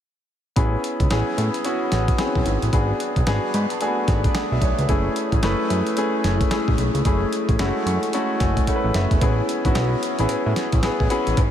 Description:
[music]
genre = R&B, new jack swing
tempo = 111 BPM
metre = 4/4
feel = swing 61% on 16ths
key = unclear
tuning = A4 = 440 Hz
[part]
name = warm concert grand piano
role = accompaniment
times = 0.6-11.4 s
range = G#3 to C#6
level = -22 LUFS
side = left 1 dB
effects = none
[part]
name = fat analog bass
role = bass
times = 0.6-11.5 s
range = E1 to A2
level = -22 LUFS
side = equal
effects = none
[part]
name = dusty soul sampler-style drum kit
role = drums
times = 0.6-11.5 s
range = hi-hat, kick drum, snare drum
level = -24 LUFS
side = equal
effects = none
[part]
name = cowbell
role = percussion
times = 9.2-11.5 s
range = none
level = -37 LUFS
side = right 5 dB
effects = none
[sound]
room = moderate huge ambient reverb, RT60 6.1 s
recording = dreamy mix soaked in reverb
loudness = -19 LUFS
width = side -10 dB against mid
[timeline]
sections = 0.6-9.2 A section; 9.2-11.5 B section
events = grand piano fill 3.3-4.9, 7.6-9.2; drum fill 8.7-9.2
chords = 0.6 Amaj9; 2.7 G#m7b5; 4.9 F#m9; 9.2 Amaj9

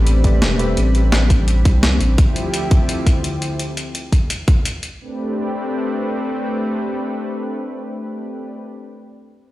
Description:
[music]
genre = liquid drum and bass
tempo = 170 BPM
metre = 4/4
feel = straight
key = A minor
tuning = A4 = 440 Hz
[part]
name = tine electric piano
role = accompaniment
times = 0.0-0.8 s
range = A3 to E5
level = -25 LUFS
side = left 1 dB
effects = overdrive, fast stereo tremolo, digital delay
[part]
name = lush unison pad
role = sustained chords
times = 0.0-8.6 s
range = D2 to B5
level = -23 LUFS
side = left 1 dB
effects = chorus, sidechain pumping
[part]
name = saturated sub bass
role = bass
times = 0.0-2.2 s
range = E1 to C2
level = -16 LUFS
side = equal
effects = tube saturation
[part]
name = breakbeat sampler-style drum kit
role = drums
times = 0.1-4.9 s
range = hi-hat, snare drum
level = -22 LUFS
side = equal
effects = none
[part]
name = electronic kick drum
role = drums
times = 0.2-4.5 s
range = none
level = -14 LUFS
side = equal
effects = none
[sound]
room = light reverb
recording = played on a big sound system in a bare room, stone room reverb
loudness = -16 LUFS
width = side -16 dB against mid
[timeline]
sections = 0.0-5.0 A section; 5.0-7.8 B section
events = none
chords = 0.0 Am11; 2.2 Dm11; 5.0 Am11

